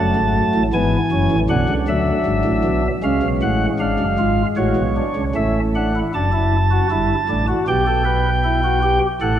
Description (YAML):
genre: classical, baroque-style 4-part fugue for pipe organ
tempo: 78 BPM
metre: 4/4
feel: straight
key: D major from 6.1 s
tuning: A4 = 440 Hz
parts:
  - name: pipe organ, flutes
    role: solo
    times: 0.0-9.4 s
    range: F#1 to A5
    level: -16 LUFS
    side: equal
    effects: none
room: wet concert hall reverb, RT60 2.2 s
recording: none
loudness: -16 LUFS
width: side -10 dB against mid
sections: 0.0-6.1 A section; 6.1-9.4 B section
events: none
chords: 0.0 F#m; 1.5 G#dim/B; 3.0 C#; 4.6 F#m/A; 6.1 D/F#; 7.7 Em/B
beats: 0.74 1.50 2.27 | 3.04 3.81 4.58 5.35 | 6.13 6.90 7.67 8.44 | 9.20